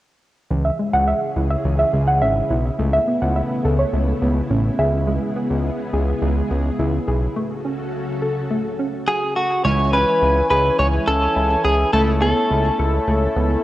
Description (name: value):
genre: pop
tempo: 105 BPM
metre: 4/4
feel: straight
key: C# minor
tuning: A4 = 439 Hz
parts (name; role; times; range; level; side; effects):
- string machine, cellos; sustained chords; 0.5-9.6 s; C#3 to A4; -26 LUFS; equal; ensemble chorus
- soft round pluck; arpeggios; 0.5-13.5 s; E3 to A4; -26 LUFS; right 1 dB; chorus, digital delay
- fat analog bass; bass; 0.5-13.6 s; G#1 to C#2; -20 LUFS; equal; none
- soft round pluck; second line; 0.6-4.9 s; C#5 to F#5; -21 LUFS; right 1 dB; chorus, digital delay
- direct-recorded clean electric guitar; melody; 9.1-13.6 s; F#4 to C#5; -18 LUFS; equal; digital delay
- analog synth brass; accompaniment; 9.6-13.6 s; E3 to G#5; -23 LUFS; left 1 dB; chorus
room: moderate concert hall reverb, RT60 1.8 s, digital ambience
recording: worn, warbling old tape, cassette tape, warbly pitch drift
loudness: -17 LUFS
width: side -15 dB against mid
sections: 0.5-9.6 A section; 9.6-13.6 B section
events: none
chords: 0.5 C#m; 2.8 Aadd9/C#; 4.8 E/C#; 7.4 F#m/C#; 9.6 C#m; 11.9 Aadd9/C#